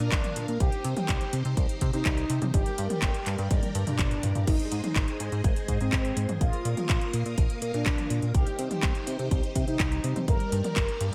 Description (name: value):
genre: italo disco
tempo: 124 BPM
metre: 4/4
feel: straight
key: C minor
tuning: A4 = 441 Hz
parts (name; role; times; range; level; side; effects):
- mellow synth brass; melody; 0.0-11.0 s; C4 to Bb4; -36 LUFS; equal; chorus, delay, shimmer reverb
- string machine, full ensemble; sustained chords; 0.0-11.1 s; G3 to Eb6; -39 LUFS; equal; phaser, ensemble chorus, shimmer reverb
- chorused synth bass; bass; 0.0-11.1 s; G1 to C3; -32 LUFS; equal; none
- house drum kit; drums; 0.0-11.1 s; crash cymbal, handclaps, hi-hat, toms; -35 LUFS; equal; gated reverb
- electronic kick drum; drums; 0.1-10.9 s; none; -29 LUFS; equal; none
room: digital ambience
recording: none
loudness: -27 LUFS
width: mono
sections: 0.0-11.1 A section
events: drum fill 3.5-4.5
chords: 0.0 Bbsus4; 0.6 Cm; 2.5 Gm; 4.5 Ab; 6.4 Bbsus4; 8.3 Cm; 10.3 Gm